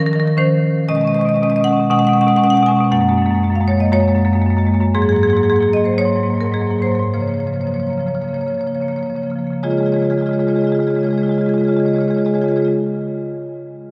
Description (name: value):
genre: classical, contemporary piece for solo marimba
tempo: 91-121 BPM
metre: 4/4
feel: rubato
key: Db major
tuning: A4 = 439 Hz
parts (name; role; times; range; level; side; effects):
- marimba with medium hard mallets; solo; 0.0-12.7 s; Gb2 to Ab5; -17 LUFS; equal; none
room: wet cathedral reverb, RT60 5.0 s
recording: in a vast, echoing space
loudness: -17 LUFS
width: mono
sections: 0.0-9.6 A section; 9.6-13.9 B section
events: slowing down 3.9-9.6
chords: 0.0 Dbmaj9/Eb; 0.9 Cb69; 2.9 Gbadd9; 4.9 Absus2; 7.1 Db6; 9.6 Dbadd9